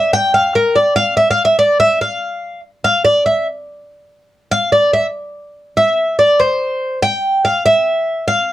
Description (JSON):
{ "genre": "latin", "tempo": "144 BPM", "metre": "4/4", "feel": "straight", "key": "unclear", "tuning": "A4 = 439 Hz", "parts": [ { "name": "Cuban tres", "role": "solo", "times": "0.0-8.5 s", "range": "Bb4 to G5", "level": "-12 LUFS", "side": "equal", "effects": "none" } ], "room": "light reverb", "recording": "close, detailed microphones", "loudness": "-12 LUFS", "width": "side -14 dB against mid", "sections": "0.0-8.5 A section", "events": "Cuban tres solo 0.0-8.5", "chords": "none", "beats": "0.34 0.76 | 1.18 1.59 2.01 2.43 | 2.85 3.26 3.68 4.10 | 4.52 4.93 5.35 5.77 | 6.19 6.61 7.03 7.44 | 7.86 8.28" }